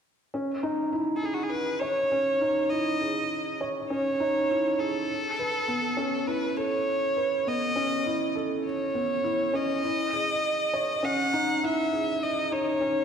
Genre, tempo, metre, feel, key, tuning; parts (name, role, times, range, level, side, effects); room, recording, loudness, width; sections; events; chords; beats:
piano and strings electronica; 101 BPM; 4/4; straight; C# minor; A4 = 436 Hz
felt-muted upright piano; riff; 0.3-13.0 s; B3 to C#5; -28 LUFS; equal; low-pass filter
rich violin; melody; 1.2-13.0 s; F#4 to F#5; -27 LUFS; equal
wet scoring stage reverb, RT60 1.6 s; -25 LUFS; side -7 dB against mid
0.3-13.0 A section
0.3 C#madd9; 5.1 Aadd9; 9.8 C#madd9
| 0.34 0.93 1.52 2.12 | 2.71 3.31 3.90 4.49 | 5.09 5.68 6.28 6.87 | 7.46 8.06 8.65 9.25 | 9.84 10.44 11.03 11.62 | 12.22 12.81